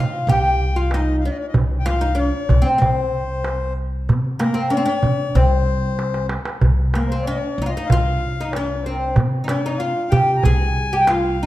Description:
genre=Arabic maqam ensemble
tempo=94 BPM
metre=4/4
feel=straight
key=C maqam bayati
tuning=A4 = 439 Hz
part: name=oud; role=melody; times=0.0-11.5 s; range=Bb3 to Ab4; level=-21 LUFS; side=equal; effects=none
part: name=accordion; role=second line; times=0.0-11.5 s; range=Bb4 to Bb5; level=-26 LUFS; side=left 6 dB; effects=none
part: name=upright bass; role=bass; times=0.0-11.5 s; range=C2 to C3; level=-21 LUFS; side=equal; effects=none
part: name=darbuka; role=percussion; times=0.3-11.2 s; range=none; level=-22 LUFS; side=right 2 dB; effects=none
room=moderate recital hall reverb, RT60 1.5 s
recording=dark, warm production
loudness=-17 LUFS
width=side -15 dB against mid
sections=0.0-11.5 A section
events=drum fill 6.0-6.6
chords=none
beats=0.27 0.91 | 1.54 2.17 2.81 3.44 | 4.08 4.71 5.35 5.99 | 6.62 7.26 7.89 8.53 | 9.17 9.80 10.44 11.08

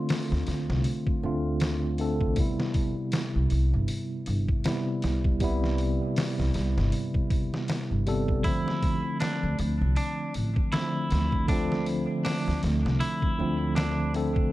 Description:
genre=trip hop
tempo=79 BPM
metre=4/4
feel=swing 58% on 16ths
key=D dorian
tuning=A4 = 440 Hz
part: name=bright tine electric piano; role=accompaniment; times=0.0-14.5 s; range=C3 to A4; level=-28 LUFS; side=equal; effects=medium stereo tremolo, harmonic tremolo, low-pass filter, tape echo
part: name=trip hop sampler-style drum kit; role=drums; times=0.1-14.5 s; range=hi-hat, kick drum, snare drum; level=-30 LUFS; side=equal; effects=small room ambience
part: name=upright bass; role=bass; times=0.3-14.5 s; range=G1 to D2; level=-28 LUFS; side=equal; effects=none
part: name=clean electric guitar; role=arpeggios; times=8.4-14.1 s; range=D4 to E4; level=-33 LUFS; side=right 1 dB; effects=tape echo
room=little or no reverb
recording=dark, warm production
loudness=-24 LUFS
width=side -16 dB against mid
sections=0.0-14.5 A section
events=none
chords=0.0 Dm7; 2.4 Cmaj7; 8.4 Dm7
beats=0.09 0.85 1.61 | 2.37 3.13 3.89 4.65 | 5.41 6.17 6.93 7.69 | 8.45 9.21 9.97 10.73 | 11.49 12.25 13.01 13.77

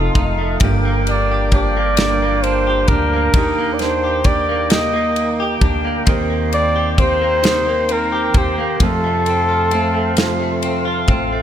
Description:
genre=six-eight pop ballad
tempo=44 BPM (dotted quarters)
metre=6/8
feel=straight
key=unclear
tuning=A4 = 441 Hz
part: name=mellow flugelhorn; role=melody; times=0.0-10.6 s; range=G4 to Eb5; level=-19 LUFS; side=equal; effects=none
part: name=direct-recorded clean electric guitar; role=accompaniment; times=0.0-11.4 s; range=F2 to G4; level=-22 LUFS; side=right 1 dB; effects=double-tracked left and right
part: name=tonewheel organ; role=sustained chords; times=0.0-11.4 s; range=A4 to D6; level=-25 LUFS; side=equal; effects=overdrive, slow rotary speaker
part: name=fingerpicked steel-string acoustic guitar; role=arpeggios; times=0.0-11.4 s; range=F2 to G4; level=-25 LUFS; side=right 2 dB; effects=ping-pong delay
part: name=upright bass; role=bass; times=0.0-11.4 s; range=F1 to F2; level=-22 LUFS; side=equal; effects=none
part: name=modern studio drum kit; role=drums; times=0.2-11.3 s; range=kick drum, ride cymbal, snare drum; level=-18 LUFS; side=equal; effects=none
room=light reverb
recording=none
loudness=-14 LUFS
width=side -10 dB against mid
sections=0.0-11.4 A section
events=none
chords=0.0 F7; 0.6 Gm7; 3.3 Ebmaj7; 6.1 Cm7/Eb; 8.8 F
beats=| 0.61 1.98 | 3.34 4.71 | 6.07 7.44 | 8.80 10.17

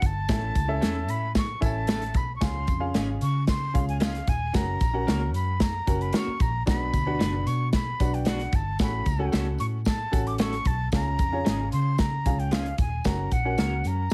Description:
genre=uptempo 1960s-style soul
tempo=113 BPM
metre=4/4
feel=straight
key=unclear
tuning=A4 = 441 Hz
part: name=breathy concert flute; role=melody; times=0.0-14.1 s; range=E#5 to D6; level=-34 LUFS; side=equal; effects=none
part: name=vintage muted fingered electric bass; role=bass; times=0.0-14.1 s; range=D#1 to C#3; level=-31 LUFS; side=equal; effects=none
part: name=natural country drum kit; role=drums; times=0.0-14.1 s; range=hi-hat, kick drum, snare drum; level=-28 LUFS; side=equal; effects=none
part: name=tambourine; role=percussion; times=0.0-14.1 s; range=none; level=-50 LUFS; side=equal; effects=none
part: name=clear upright piano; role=accompaniment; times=0.3-14.0 s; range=A2 to F#5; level=-35 LUFS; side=equal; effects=none
part: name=electric guitar through a small old amp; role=stabs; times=0.8-13.7 s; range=G#3 to B4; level=-36 LUFS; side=equal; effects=analog chorus
room=light reverb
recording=heavily compressed radio sound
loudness=-26 LUFS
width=mono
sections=0.0-14.1 A section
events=none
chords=0.3 A; 2.4 C#; 4.5 F#; 6.7 Bm; 8.8 F#m/A; 10.9 C#; 13.1 F#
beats=| 0.29 0.82 1.35 1.88 | 2.42 2.95 3.48 4.01 | 4.54 5.07 5.61 6.14 | 6.67 7.20 7.73 8.27 | 8.80 9.33 9.86 10.39 | 10.93 11.46 11.99 12.52 | 13.05 13.59 14.12

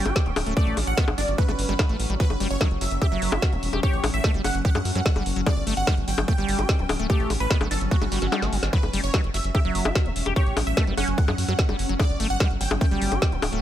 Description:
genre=psychedelic trance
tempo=147 BPM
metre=4/4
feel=straight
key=F# phrygian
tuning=A4 = 441 Hz
part: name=supersaw stab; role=melody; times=0.0-13.5 s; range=F#4 to G5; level=-31 LUFS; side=right 1 dB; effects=phaser, sidechain pumping, digital delay
part: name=evolving wavetable pad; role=sustained chords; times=0.0-13.6 s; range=F#3 to C#4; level=-32 LUFS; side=left 1 dB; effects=chorus, built-in reverb, sidechain pumping
part: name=liquid acid bass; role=riff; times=0.0-13.6 s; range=F#3 to G4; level=-31 LUFS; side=moving between left 5 dB and right 5 dB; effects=chorus, auto-pan, sidechain pumping, digital delay
part: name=round analog bass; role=bass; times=0.0-13.6 s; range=D1 to F#2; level=-27 LUFS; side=equal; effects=none
part: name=drum and bass drum kit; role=drums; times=0.1-13.6 s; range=bongos, hi-hat, snare drum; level=-28 LUFS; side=left 2 dB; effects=none
part: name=electronic kick drum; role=drums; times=0.2-13.3 s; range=none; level=-22 LUFS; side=equal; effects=none
part: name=vowel-sweep wobble bass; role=second line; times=10.8-12.0 s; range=B3 to C#4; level=-42 LUFS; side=right 3 dB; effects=none
room=digital ambience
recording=none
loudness=-21 LUFS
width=side -12 dB against mid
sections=0.0-13.6 A section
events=kick drops out 8.3-8.7; drum fill 8.3-8.7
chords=0.0 G5; 2.2 F#5; 5.5 G5; 8.7 F#5; 12.0 G5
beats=0.16 | 0.57 0.97 1.38 1.79 | 2.20 2.61 3.02 3.42 | 3.83 4.24 4.65 5.06 | 5.46 5.87 6.28 6.69 | 7.10 7.51 7.91 8.32 | 8.73 9.14 9.55 9.96 | 10.36 10.77 11.18 11.59 | 11.99 12.40 12.81 13.22

